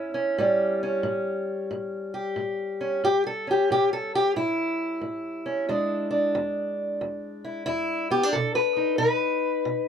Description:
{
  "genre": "acoustic country blues, solo or duo",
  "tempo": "91 BPM",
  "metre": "4/4",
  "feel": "swing 64% on 8ths",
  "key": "unclear",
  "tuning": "A4 = 439 Hz",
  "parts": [
    { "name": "fingerpicked steel-string acoustic guitar", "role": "solo", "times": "0.0-9.9 s", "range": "E2 to B4", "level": "-23 LUFS", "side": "equal", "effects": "none" }
  ],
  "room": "moderate booth ambience, RT60 0.2 s",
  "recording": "none",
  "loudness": "-23 LUFS",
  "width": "side -8 dB against mid",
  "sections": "0.0-9.9 A section",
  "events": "steel-string acoustic guitar solo 0.0-9.9",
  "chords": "0.0 A7; 5.7 E7; 8.3 B"
}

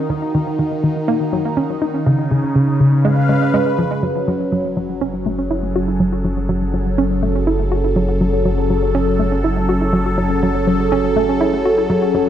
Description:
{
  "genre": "ambient, sequencer-driven space music",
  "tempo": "122 BPM",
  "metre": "4/4",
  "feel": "straight",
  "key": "F# minor from 4.0 s",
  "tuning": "A4 = 440 Hz",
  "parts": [
    { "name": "phased analog pad", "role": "sustained chords", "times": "0.0-12.3 s", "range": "Db3 to F5", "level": "-18 LUFS", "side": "equal", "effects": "phaser, chorus" },
    { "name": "hollow square pluck", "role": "riff", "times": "0.0-12.2 s", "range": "Db3 to F#4", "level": "-19 LUFS", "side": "equal", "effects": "chorus, analog delay" },
    { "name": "round analog bass", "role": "bass", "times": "4.0-12.3 s", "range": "F#1", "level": "-22 LUFS", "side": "equal", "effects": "none" }
  ],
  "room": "moderate plate reverb, RT60 2.8 s",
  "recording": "dark, warm production",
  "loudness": "-15 LUFS",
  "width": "side -10 dB against mid",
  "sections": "0.0-4.0 A section; 4.0-12.3 B section",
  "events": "none",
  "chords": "0.0 Ebmadd9; 2.1 Db7; 4.0 F#madd9"
}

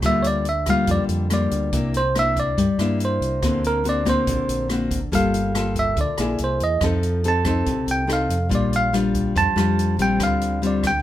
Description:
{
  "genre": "bossa nova",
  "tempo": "142 BPM",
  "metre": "4/4",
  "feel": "straight",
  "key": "unclear",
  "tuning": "A4 = 442 Hz",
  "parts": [
    { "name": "nylon-string guitar", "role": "accompaniment", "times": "0.0-11.0 s", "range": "Bb2 to A4", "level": "-22 LUFS", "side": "left 3 dB", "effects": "none" },
    { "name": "fingered electric bass", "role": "bass", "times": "0.0-11.0 s", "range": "G1 to G2", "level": "-25 LUFS", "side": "right 1 dB", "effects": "none" },
    { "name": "open jazz drum kit", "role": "drums", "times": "0.0-10.9 s", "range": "hi-hat, kick drum, rim click", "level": "-29 LUFS", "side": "equal", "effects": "none" },
    { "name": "barky tine electric piano", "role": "melody", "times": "0.1-11.0 s", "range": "A#4 to A5", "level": "-23 LUFS", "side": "right 2 dB", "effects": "none" }
  ],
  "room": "moderate studio reverb, RT60 0.6 s",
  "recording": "minimal, uncompressed stereo recording",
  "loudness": "-18 LUFS",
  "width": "side -13 dB against mid",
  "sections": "0.0-11.0 A section",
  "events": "tine electric piano solo 0.0-11.0",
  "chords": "0.0 Bb6/D; 1.7 C9; 3.4 Daug7; 5.1 Gm9; 6.4 C7alt; 6.8 F7; 8.5 Bb6; 10.2 Dm7"
}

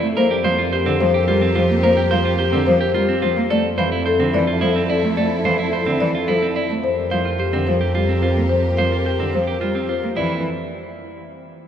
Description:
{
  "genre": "classical, minimalist pattern music",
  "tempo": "108 BPM",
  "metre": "3/4",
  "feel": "straight",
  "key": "unclear",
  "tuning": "A4 = 441 Hz",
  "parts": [
    { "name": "marimba with medium mallets", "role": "melody", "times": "0.0-10.4 s", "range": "G4 to F5", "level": "-21 LUFS", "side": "left 5 dB", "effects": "none" },
    { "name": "rich cello", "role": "accompaniment", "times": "0.0-10.4 s", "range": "D3 to Bb3", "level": "-24 LUFS", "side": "right 2 dB", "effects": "none" },
    { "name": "clean electric guitar", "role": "arpeggios", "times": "0.0-10.4 s", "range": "C4 to C5", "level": "-23 LUFS", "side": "right 4 dB", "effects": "none" },
    { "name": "warm symphonic string section", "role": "sustained chords", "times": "0.2-10.0 s", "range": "E4 to Bb4", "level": "-28 LUFS", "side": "equal", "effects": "none" },
    { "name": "warm symphonic double bass section", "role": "bass", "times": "0.2-10.4 s", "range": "F2", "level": "-23 LUFS", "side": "right 1 dB", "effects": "none" }
  ],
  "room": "wet cathedral reverb, RT60 5.0 s",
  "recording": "in a vast, echoing space",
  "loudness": "-16 LUFS",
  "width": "side -9 dB against mid",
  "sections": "0.0-10.2 A section; 10.2-11.7 B section",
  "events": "none",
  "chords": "0.2 Gm7/F; 3.5 Fmaj7; 6.8 Gm7/F; 10.2 Dmadd9/F (rootless)"
}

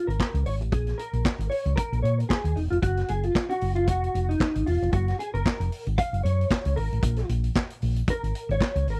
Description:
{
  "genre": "disco",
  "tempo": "114 BPM",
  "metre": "4/4",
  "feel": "swing 56% on 16ths",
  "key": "Bb minor",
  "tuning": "A4 = 440 Hz",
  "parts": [
    { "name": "mellow electric guitar", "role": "accompaniment", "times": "0.0-9.0 s", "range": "Eb4 to F5", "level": "-31 LUFS", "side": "equal", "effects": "ensemble chorus" },
    { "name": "hollow-body short-scale fingered electric bass", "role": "bass", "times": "0.1-9.0 s", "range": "E1 to Bb2", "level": "-28 LUFS", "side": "equal", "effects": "none" },
    { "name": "vintage drum kit", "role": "drums", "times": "0.1-9.0 s", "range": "handclaps, hi-hat, kick drum, snare drum", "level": "-29 LUFS", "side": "equal", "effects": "none" }
  ],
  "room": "little or no reverb",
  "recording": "dry, close 1970s-style studio recording",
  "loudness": "-26 LUFS",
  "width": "mono",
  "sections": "0.0-9.0 A section",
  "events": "clean electric guitar solo 0.0-9.0",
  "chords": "0.0 Bbm7; 2.8 Gbmaj9; 7.0 Bbm7"
}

